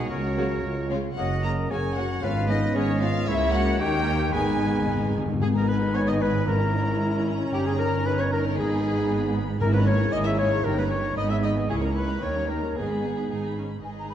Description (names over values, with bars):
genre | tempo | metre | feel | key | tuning
quick classical-period movement for symphony orchestra | 114 BPM | 2/4 | straight | F# major, G# minor from 3.3 s | A4 = 437 Hz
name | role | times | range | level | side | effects
rich chamber violin section | melody | 0.0-14.1 s | C#5 to C#6 | -35 LUFS | left 3 dB | none
bright oboe | second line | 0.0-5.1 s | A#4 to D#5 | -34 LUFS | right 2 dB | none
concert flute | second line | 0.0-14.1 s | C#5 to E6 | -35 LUFS | left 1 dB | none
warm clarinet | second line | 0.0-13.6 s | C#4 to E5 | -30 LUFS | left 1 dB | none
mellow French horn section | sustained chords | 0.0-13.6 s | G#3 to F#4 | -30 LUFS | left 2 dB | none
rich chamber cello section | bass | 0.0-14.1 s | C#2 to G#2 | -31 LUFS | right 3 dB | none
rich chamber double bass section | bass | 0.1-14.1 s | F#1 to D#2 | -28 LUFS | right 2 dB | none
warm chamber violin section | second line | 0.4-14.1 s | A#3 to E5 | -34 LUFS | left 3 dB | none
warm studio viola section | accompaniment | 0.4-14.1 s | C#3 to G#4 | -32 LUFS | right 1 dB | none
timpani | percussion | 2.2-10.3 s | G#2 | -30 LUFS | left 3 dB | none
room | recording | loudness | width
wet scoring stage reverb, RT60 1.5 s | dark, warm production | -22 LUFS | side -10 dB against mid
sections
0.0-5.4 A section; 5.4-13.8 B section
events
timpani fill 4.3-5.4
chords
0.1 F#/C#; 0.6 C#; 1.2 F#; 2.2 C#5/G#; 3.3 A#m7b5/C#; 3.8 D#; 4.3 G#m; 6.5 A#m7b5/G#; 7.5 D#7/G; 8.6 G#m; 9.6 A#m7b5/G#; 10.6 D#7/G; 11.2 G#m; 11.7 A#dim/C#; 12.2 D#7; 12.8 G#m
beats
| 0.11 0.64 | 1.18 1.71 | 2.23 2.76 | 3.28 3.80 | 4.33 4.88 | 5.41 5.95 | 6.47 7.00 | 7.53 8.06 | 8.58 9.10 | 9.61 10.12 | 10.64 11.16 | 11.68 12.21 | 12.75 13.30 | 13.83